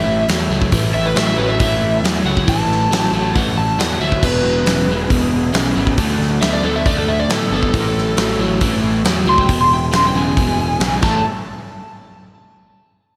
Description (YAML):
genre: blues rock power trio and southern rock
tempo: 137 BPM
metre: 4/4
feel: straight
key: A major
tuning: A4 = 440 Hz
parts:
  - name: overdriven slide guitar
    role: melody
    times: 0.0-11.2 s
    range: A4 to C6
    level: -22 LUFS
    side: equal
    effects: none
  - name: overdriven tonewheel organ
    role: sustained chords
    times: 0.0-11.3 s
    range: G#3 to Bb4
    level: -33 LUFS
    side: equal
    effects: none
  - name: crunchy overdriven guitar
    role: riff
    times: 0.0-11.2 s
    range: E2 to B3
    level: -22 LUFS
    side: equal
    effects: slapback echo
  - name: fuzz picked electric bass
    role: bass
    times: 0.0-11.2 s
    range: E1 to A2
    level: -24 LUFS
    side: equal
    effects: overdrive
  - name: big rock drum kit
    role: drums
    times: 0.3-11.1 s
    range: crash cymbal, hi-hat, kick drum, snare drum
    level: -22 LUFS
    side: equal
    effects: none
room: moderate lush hall reverb, RT60 2.2 s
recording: big arena sound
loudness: -16 LUFS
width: mono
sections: 0.0-11.2 A section; 11.2-13.0 B section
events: none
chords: 0.0 A; 4.2 E; 6.0 D; 7.7 A; 9.5 E; 11.0 A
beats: 0.29 | 0.72 1.16 1.60 2.04 | 2.48 2.92 3.35 3.79 | 4.23 4.67 5.11 5.54 | 5.98 6.42 6.86 7.30 | 7.73 8.17 8.61 9.05 | 9.49 9.93 10.37 10.80 | 11.24